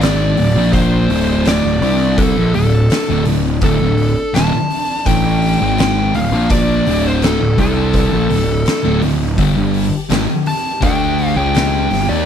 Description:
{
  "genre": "stoner and doom metal",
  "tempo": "83 BPM",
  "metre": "4/4",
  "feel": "straight",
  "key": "D minor",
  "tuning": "A4 = 440 Hz",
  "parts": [
    { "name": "fuzz lead guitar", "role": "melody", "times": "0.0-12.3 s", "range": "A4 to A5", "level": "-20 LUFS", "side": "equal", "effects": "distortion, slapback echo" },
    { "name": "soft string machine", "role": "sustained chords", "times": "0.0-12.3 s", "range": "D4 to A5", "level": "-29 LUFS", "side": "left 1 dB", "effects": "none" },
    { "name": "thick fuzz guitar", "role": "riff", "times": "0.0-12.3 s", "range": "D2 to Eb4", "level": "-18 LUFS", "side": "left 10 dB", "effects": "distortion" },
    { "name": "thick fuzz guitar", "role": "riff", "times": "0.0-12.3 s", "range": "D2 to Eb4", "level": "-18 LUFS", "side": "right 10 dB", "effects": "distortion" },
    { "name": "fuzz picked electric bass", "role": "bass", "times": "0.0-12.3 s", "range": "D1 to Eb2", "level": "-19 LUFS", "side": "equal", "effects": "overdrive, tube saturation" },
    { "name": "oversized low-tuned drum kit", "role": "drums", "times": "0.0-12.1 s", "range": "hi-hat, kick drum, snare drum", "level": "-20 LUFS", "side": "equal", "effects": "none" }
  ],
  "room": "little or no reverb",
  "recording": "none",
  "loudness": "-12 LUFS",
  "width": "side -8 dB against mid",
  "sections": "0.0-12.3 A section",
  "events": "none",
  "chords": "0.0 Dm; 9.4 G5"
}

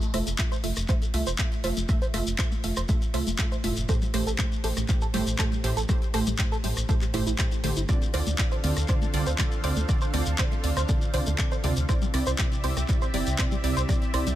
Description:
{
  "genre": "progressive house",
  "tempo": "120 BPM",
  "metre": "4/4",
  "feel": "straight",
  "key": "A minor",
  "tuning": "A4 = 440 Hz",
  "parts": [
    { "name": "house drum kit", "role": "drums", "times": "0.0-14.4 s", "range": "handclaps, hi-hat, rim click", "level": "-33 LUFS", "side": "left 1 dB", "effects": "none" },
    { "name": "shekere", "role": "percussion", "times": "0.0-14.4 s", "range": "none", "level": "-37 LUFS", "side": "left 4 dB", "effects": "none" },
    { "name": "tight sequenced synth", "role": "arpeggios", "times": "0.1-14.3 s", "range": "G3 to C5", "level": "-34 LUFS", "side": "equal", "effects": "chorus, sidechain pumping, ping-pong delay" },
    { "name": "wide unison pluck", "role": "stabs", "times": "0.1-14.2 s", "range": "A2 to E5", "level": "-31 LUFS", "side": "right 3 dB", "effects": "sidechain pumping, ping-pong delay" },
    { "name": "round analog bass", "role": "bass", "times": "0.1-14.3 s", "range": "F1 to D2", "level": "-28 LUFS", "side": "equal", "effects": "sidechain pumping" },
    { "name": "electronic kick drum", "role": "drums", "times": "0.4-14.0 s", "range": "none", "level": "-26 LUFS", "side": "equal", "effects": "none" },
    { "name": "lush unison pad", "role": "sustained chords", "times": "8.1-14.4 s", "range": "C4 to F5", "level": "-36 LUFS", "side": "equal", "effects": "chorus, phaser, sidechain pumping" }
  ],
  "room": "little or no reverb",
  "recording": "none",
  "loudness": "-23 LUFS",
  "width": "side -13 dB against mid",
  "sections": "0.0-14.4 A section",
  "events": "filter sweep on synth arpeggio sound 0.0-14.4",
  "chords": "0.0 Fmaj7; 3.9 Am7; 7.9 Dm7; 11.9 Cadd9"
}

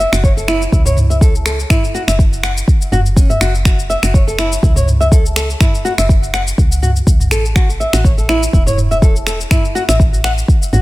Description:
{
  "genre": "afro house",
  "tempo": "123 BPM",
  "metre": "4/4",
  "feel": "swing 54% on 16ths",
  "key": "F# minor",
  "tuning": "A4 = 437 Hz",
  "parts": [
    { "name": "flamenco guitar", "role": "arpeggios", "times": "0.0-10.8 s", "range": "C#4 to F#5", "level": "-19 LUFS", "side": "equal", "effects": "sidechain pumping, dub echo" },
    { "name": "woody FM bass", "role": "bass", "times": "0.0-10.8 s", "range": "E1 to C#2", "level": "-16 LUFS", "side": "equal", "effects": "sidechain pumping" },
    { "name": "afro-pop drum kit", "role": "drums", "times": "0.0-10.8 s", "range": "finger snaps, shaker, toms", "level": "-19 LUFS", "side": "equal", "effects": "none" },
    { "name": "electronic kick drum", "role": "drums", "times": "0.2-10.6 s", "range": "none", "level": "-11 LUFS", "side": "equal", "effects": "none" }
  ],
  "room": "digital ambience",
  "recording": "none",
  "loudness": "-11 LUFS",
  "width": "side -18 dB against mid",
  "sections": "0.0-10.8 A section",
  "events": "none",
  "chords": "0.0 F#m7; 7.6 A5"
}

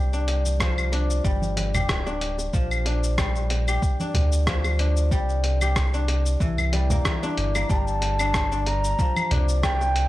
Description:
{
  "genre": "organic downtempo",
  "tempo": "93 BPM",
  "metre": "4/4",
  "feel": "swing 54% on 16ths",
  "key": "G dorian",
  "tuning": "A4 = 441 Hz",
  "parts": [
    { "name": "guzheng", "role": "arpeggios", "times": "0.0-10.1 s", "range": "E3 to G4", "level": "-28 LUFS", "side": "left 2 dB", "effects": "analog delay" },
    { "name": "round analog bass", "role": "bass", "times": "0.0-10.1 s", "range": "D1 to D2", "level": "-24 LUFS", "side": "equal", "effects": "sidechain pumping" },
    { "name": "dusty soul sampler-style drum kit", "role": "drums", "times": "0.1-10.1 s", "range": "claves, hi-hat, rim click, shaker", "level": "-29 LUFS", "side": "left 1 dB", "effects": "none" },
    { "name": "bongos and congas", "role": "percussion", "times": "0.3-9.9 s", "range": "none", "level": "-31 LUFS", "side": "right 2 dB", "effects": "none" },
    { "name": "electronic kick drum", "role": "drums", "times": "0.6-9.8 s", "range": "none", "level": "-25 LUFS", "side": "equal", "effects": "none" },
    { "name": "breathy mellow bansuri", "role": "melody", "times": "7.7-10.1 s", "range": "G5 to Bb5", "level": "-26 LUFS", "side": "right 1 dB", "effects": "none" }
  ],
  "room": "little or no reverb",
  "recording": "dry, gritty hardware recording, cassette tape",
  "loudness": "-21 LUFS",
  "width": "side -16 dB against mid",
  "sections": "0.0-10.1 A section",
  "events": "none",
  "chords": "0.0 G5; 2.5 Bb6; 5.1 C7; 7.7 Gm7"
}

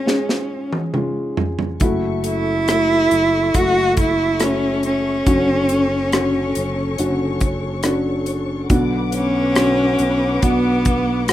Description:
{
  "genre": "pop ballad",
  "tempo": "70 BPM",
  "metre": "4/4",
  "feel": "straight",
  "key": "F# minor",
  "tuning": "A4 = 438 Hz",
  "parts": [
    { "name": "rich cello", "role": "melody", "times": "0.0-11.3 s", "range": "B3 to F#4", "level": "-18 LUFS", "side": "equal", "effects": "digital delay" },
    { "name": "felt-muted upright piano", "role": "accompaniment", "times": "0.0-11.3 s", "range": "G#2 to G#4", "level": "-23 LUFS", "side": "left 1 dB", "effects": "none" },
    { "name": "modern studio drum kit", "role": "drums", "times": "0.1-11.3 s", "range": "hi-hat, kick drum, rim click, snare drum, toms", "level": "-21 LUFS", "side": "equal", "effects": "none" },
    { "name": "dark studio string section", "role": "sustained chords", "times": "1.8-11.3 s", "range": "A4 to D6", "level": "-28 LUFS", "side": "left 2 dB", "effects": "none" },
    { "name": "sustaining fretless electric bass", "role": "bass", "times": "1.8-11.3 s", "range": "F#1 to B1", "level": "-26 LUFS", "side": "equal", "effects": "none" }
  ],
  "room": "light reverb",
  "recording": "rough home demo mix",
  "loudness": "-16 LUFS",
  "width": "side -13 dB against mid",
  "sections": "0.0-11.3 A section",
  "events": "drum fill 0.1-1.8",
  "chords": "0.0 C#; 1.8 F#m7; 5.3 Dmaj7/F#; 8.7 Bm"
}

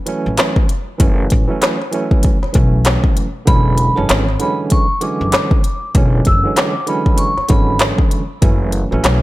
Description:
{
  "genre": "hip hop, boom-bap hip-hop",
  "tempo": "97 BPM",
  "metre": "4/4",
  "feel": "swing 60% on 16ths",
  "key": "F# minor",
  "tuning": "A4 = 440 Hz",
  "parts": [
    { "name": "barky tine electric piano", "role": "accompaniment", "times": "0.1-9.2 s", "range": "D3 to C#4", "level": "-20 LUFS", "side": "right 2 dB", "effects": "overdrive, medium tremolo, cassette tape, high-pass filter, low-pass filter" },
    { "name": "organic electronic drum kit", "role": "drums", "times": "0.1-9.2 s", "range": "handclaps, hi-hat, kick drum, snare drum", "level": "-14 LUFS", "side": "equal", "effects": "none" },
    { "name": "upright bass", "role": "bass", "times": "0.3-9.2 s", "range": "E1 to B1", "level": "-17 LUFS", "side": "equal", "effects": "none" },
    { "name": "vibraphone with hard mallets", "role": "melody", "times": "3.5-7.8 s", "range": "A5 to E6", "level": "-20 LUFS", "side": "equal", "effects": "high-pass filter, low-pass filter, ping-pong delay" }
  ],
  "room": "little or no reverb",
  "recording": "none",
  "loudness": "-12 LUFS",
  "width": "side -17 dB against mid",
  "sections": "0.0-9.2 A section",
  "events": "none",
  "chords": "0.0 F#m7; 3.5 E13; 8.4 F#m7"
}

